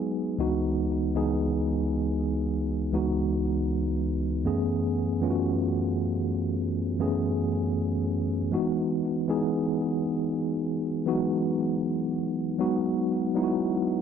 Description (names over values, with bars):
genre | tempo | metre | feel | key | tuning
R&B | 59 BPM | 4/4 | straight | E major | A4 = 440 Hz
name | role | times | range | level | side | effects
mellow tine electric piano | solo | 0.0-14.0 s | C#2 to G#4 | -25 LUFS | equal | medium stereo tremolo, ping-pong delay
room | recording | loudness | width
moderate lush hall reverb, RT60 2.3 s | dark, warm production | -25 LUFS | side -8 dB against mid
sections
0.0-14.0 A section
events
none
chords
0.4 C#m11; 4.5 F#m11; 8.5 Emaj9; 12.6 G#m7